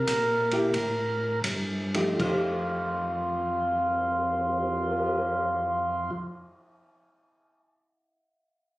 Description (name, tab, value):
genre	soul jazz organ trio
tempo	76-94 BPM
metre	4/4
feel	swing 67% on 8ths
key	F mixolydian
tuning	A4 = 440 Hz
part	percussive tonewheel organ	melody	0.0-6.1 s	F4 to Bb4	-27 LUFS	equal	slow rotary speaker
part	mellow tonewheel organ	bass	0.0-6.1 s	F2 to Bb2	-34 LUFS	equal	overdrive, chorus vibrato
part	vintage drum kit	drums	0.1-5.2 s	crash cymbal, cymbal swell, hi-hat, kick drum, ride cymbal	-34 LUFS	equal	none
part	vintage hollow-body jazz guitar	accompaniment	0.5-6.9 s	F3 to G4	-28 LUFS	equal	none
room	moderate studio reverb, RT60 0.8 s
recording	recorded on a phone in the room, studio reverb, compression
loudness	-25 LUFS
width	side -18 dB against mid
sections	0.0-2.2 A section; 2.2-5.3 B section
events	slowing down 0.0-2.2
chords	0.0 C7(no3) (rootless); 2.2 F9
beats	0.07 0.73 1.43 | 2.19 2.98 3.76 4.55